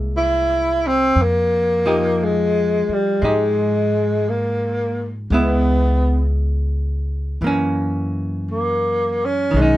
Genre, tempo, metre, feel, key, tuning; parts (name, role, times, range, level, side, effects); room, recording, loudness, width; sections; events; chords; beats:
jazz ballad; 58 BPM; 4/4; swing 66% on 8ths; A4 = 444 Hz
archtop guitar, miked and amplified; accompaniment; 0.0-9.8 s; D#3 to G4; -23 LUFS; equal
upright bass; bass; 0.0-9.8 s; B1 to Ab2; -22 LUFS; equal
breathy tenor saxophone; melody; 0.2-9.8 s; G3 to E4; -18 LUFS; equal
light reverb; dark, warm production; -17 LUFS; side -15 dB against mid
0.0-9.8 A section
0.0 C7b13; 1.2 Fm9; 5.3 Dbm7; 7.4 Gb7
0.12 | 1.16 2.19 3.23 4.28 | 5.32 6.36 7.41 8.47 | 9.53